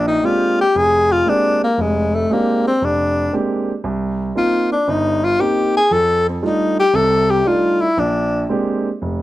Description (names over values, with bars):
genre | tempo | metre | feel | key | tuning
jazz | 116 BPM | 4/4 | swing 69% on 8ths | Bb mixolydian | A4 = 440 Hz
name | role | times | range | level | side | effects
warm tenor saxophone | melody | 0.0-8.5 s | Ab3 to A4 | -15 LUFS | left 2 dB | none
dark baby grand piano | accompaniment | 0.0-9.2 s | F1 to G4 | -20 LUFS | right 2 dB | none
room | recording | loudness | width
light reverb, studio reverb | dry, close 1970s-style studio recording | -14 LUFS | side -16 dB against mid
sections
0.0-9.2 A section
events
none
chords
0.0 Bb13; 3.8 Cm7; 5.9 F13; 8.0 Bb13